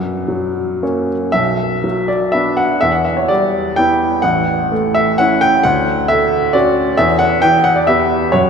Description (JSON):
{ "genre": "classical, piano waltz", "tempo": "110-140 BPM", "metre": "3/4", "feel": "rubato", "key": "unclear", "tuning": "A4 = 437 Hz", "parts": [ { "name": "clear baby grand piano", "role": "solo", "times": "0.0-8.5 s", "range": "A1 to G5", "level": "-12 LUFS", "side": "equal", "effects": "none" } ], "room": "wet cathedral reverb, RT60 4.5 s", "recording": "recorded in a church or concert hall", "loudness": "-12 LUFS", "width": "side -6 dB against mid", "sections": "0.0-8.5 A section", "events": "none", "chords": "0.0 F#; 1.3 Bm; 2.8 Em7; 4.2 A; 5.7 Dmaj7; 7.0 Em" }